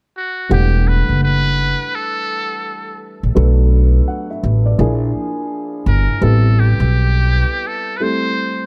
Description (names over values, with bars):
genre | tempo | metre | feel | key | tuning
hip hop, jazz-hop | 84 BPM | 4/4 | swing 63% on 16ths | E minor | A4 = 439 Hz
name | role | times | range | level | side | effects
trumpet with metal mute | melody | 0.2-8.7 s | F#4 to C5 | -23 LUFS | equal | slapback echo
dark upright piano | accompaniment | 0.5-8.7 s | E3 to F#5 | -24 LUFS | equal | none
upright bass | bass | 0.5-7.4 s | E1 to B1 | -15 LUFS | equal | none
room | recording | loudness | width
little or no reverb | dark, warm production | -16 LUFS | mono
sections
0.5-8.7 A section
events
none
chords
0.0 N.C.; 0.5 Em11; 3.4 Bm7; 4.8 A#7#11; 6.2 Am9